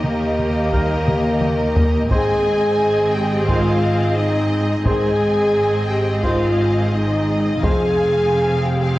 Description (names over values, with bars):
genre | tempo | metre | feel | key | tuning
cinematic, epic orchestral film score | 87 BPM | 4/4 | straight | unclear | A4 = 439 Hz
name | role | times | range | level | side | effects
warm symphonic violin section | melody | 0.0-9.0 s | Eb5 to F5 | -28 LUFS | equal | none
warm symphonic violin section | second line | 0.0-9.0 s | Bb4 to Ab5 | -28 LUFS | left 2 dB | none
clear symphonic viola section | accompaniment | 0.0-9.0 s | Bb3 to Ab4 | -26 LUFS | equal | none
dark French horn section | sustained chords | 0.0-9.0 s | Bb3 to Ab4 | -20 LUFS | left 1 dB | none
warm symphonic cello section | bass | 0.0-9.0 s | Eb2 to Ab2 | -24 LUFS | right 1 dB | none
warm symphonic double bass section | bass | 0.0-9.0 s | F1 to Eb2 | -24 LUFS | right 1 dB | none
taiko ensemble | drums | 0.0-8.3 s | none | -22 LUFS | equal | none
mellow trombone section | sustained chords | 0.7-7.9 s | Eb3 to Ab3 | -33 LUFS | right 2 dB | none
mellow trumpet | stabs | 0.7-7.9 s | Bb4 to C5 | -30 LUFS | right 2 dB | none
room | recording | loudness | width
moderate scoring stage reverb, RT60 1.8 s | worn, warbling old tape, cassette tape, warbly pitch drift | -15 LUFS | side -17 dB against mid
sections
0.0-9.0 A section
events
drum fill 1.1-2.1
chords
0.0 Eb; 2.1 Ab; 7.6 Fm